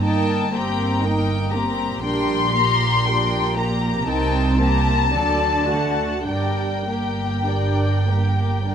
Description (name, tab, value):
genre	classical, slow romantic movement for string orchestra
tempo	50-60 BPM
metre	4/4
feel	rubato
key	G minor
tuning	A4 = 440 Hz
part	dark studio violin section	melody	0.0-8.7 s	G5 to C6	-23 LUFS	left 5 dB	none
part	warm studio violin section	second line	0.0-8.7 s	F#4 to Bb5	-27 LUFS	left 4 dB	none
part	dark studio viola section	accompaniment	0.0-8.7 s	F#3 to F#4	-25 LUFS	right 1 dB	none
part	warm studio cello section	bass	0.0-8.7 s	G2 to D3	-25 LUFS	right 2 dB	none
part	warm studio double bass section	bass	0.0-8.7 s	G1 to D2	-24 LUFS	right 2 dB	none
room	moderate scoring stage reverb, RT60 1.6 s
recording	none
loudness	-18 LUFS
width	side -8 dB against mid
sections	0.0-8.7 A section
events	none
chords	0.0 Cm7/G; 2.0 Gm/Bb; 4.1 Cm7; 5.1 D; 6.3 Gm